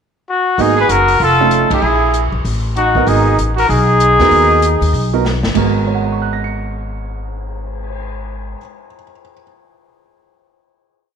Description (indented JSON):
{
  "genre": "jazz, small-group swing and bop",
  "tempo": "193 BPM",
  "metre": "4/4",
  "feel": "swing 62% on 8ths",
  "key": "G# minor",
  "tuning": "A4 = 439 Hz",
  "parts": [
    { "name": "warm trumpet", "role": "melody", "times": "0.3-5.2 s", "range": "F#4 to B4", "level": "-13 LUFS", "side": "left 3 dB", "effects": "none" },
    { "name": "breathy trumpet", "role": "second line", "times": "0.6-5.2 s", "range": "D#4 to G#4", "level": "-18 LUFS", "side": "right 7 dB", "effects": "none" },
    { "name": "warm grand piano", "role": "accompaniment", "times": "0.6-9.4 s", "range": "G#2 to C#7", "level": "-19 LUFS", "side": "right 9 dB", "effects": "none" },
    { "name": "upright bass", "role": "bass", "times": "0.6-8.5 s", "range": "F1 to D#2", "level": "-18 LUFS", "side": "left 1 dB", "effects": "none" },
    { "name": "open jazz drum kit", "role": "drums", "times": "0.6-8.0 s", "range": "crash cymbal, cymbal swell, hi-hat, kick drum, ride cymbal, snare drum", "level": "-26 LUFS", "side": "left 2 dB", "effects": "none" }
  ],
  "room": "wet echo chamber reverb, RT60 1.4 s, small room reverb",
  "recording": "1960s-style stereo",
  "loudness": "-11 LUFS",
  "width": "side -7 dB against mid",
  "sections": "0.0-0.6 pickup bar; 0.6-5.6 A section; 5.6-8.0 final chord",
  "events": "band accent 1.7; drum fill 5.2-5.6",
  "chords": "0.0 N.C.; 0.6 G#m9; 1.2 Faug7; 1.8 E; 2.4 B7/A; 3.1 G#m9"
}